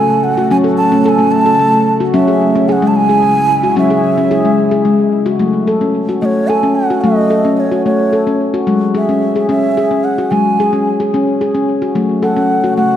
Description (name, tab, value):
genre	world meditative, meditative tuned percussion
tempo	73 BPM (dotted quarters)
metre	6/8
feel	straight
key	F# minor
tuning	A4 = 439 Hz
part	breathy bass bansuri	melody	0.0-13.0 s	C#5 to A5	-16 LUFS	right 3 dB	tape echo
part	ethereal airy pad	sustained chords	0.0-5.4, 12.3-13.0 s	C#3 to F#4	-21 LUFS	right 3 dB	ensemble chorus, built-in reverb
part	handpan	arpeggios	0.0-13.0 s	F#3 to A4	-12 LUFS	left 2 dB	tape echo
room	wet echo chamber reverb, RT60 2.3 s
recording	dark, warm production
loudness	-10 LUFS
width	side -10 dB against mid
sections	0.0-5.4 A section; 5.4-13.0 B section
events	none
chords	0.0 F#m; 2.1 C#m; 5.4 F#m; 8.7 C#m/F#; 12.0 F#m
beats	| 0.51 1.32 | 2.14 2.96 | 3.77 4.59 | 5.41 6.22 | 7.04 7.86 | 8.68 9.50 | 10.32 11.14 | 11.96 12.78